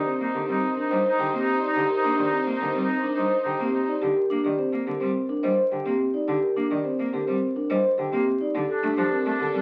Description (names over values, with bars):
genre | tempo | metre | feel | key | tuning
classical, minimalist pattern music | 106 BPM | 4/4 | straight | unclear | A4 = 440 Hz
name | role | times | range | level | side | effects
marimba with medium mallets | melody | 0.0-9.6 s | G4 to G5 | -31 LUFS | equal | none
clear oboe | second line | 0.0-3.9, 8.7-9.6 s | D4 to Eb4 | -30 LUFS | equal | none
rich cello | accompaniment | 0.0-9.6 s | D3 to Bb3 | -34 LUFS | equal | none
rich studio string section | sustained chords | 0.0-4.0, 8.7-9.6 s | D4 to C5 | -36 LUFS | equal | none
vibraphone with soft mallets | arpeggios | 0.0-9.6 s | C4 to C5 | -28 LUFS | equal | none
room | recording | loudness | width
wet large studio reverb, RT60 0.9 s | very old 78 rpm record, vinyl crackle | -24 LUFS | mono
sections
0.0-9.6 A section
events
none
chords
0.0 Cm7; 8.7 Bbmaj9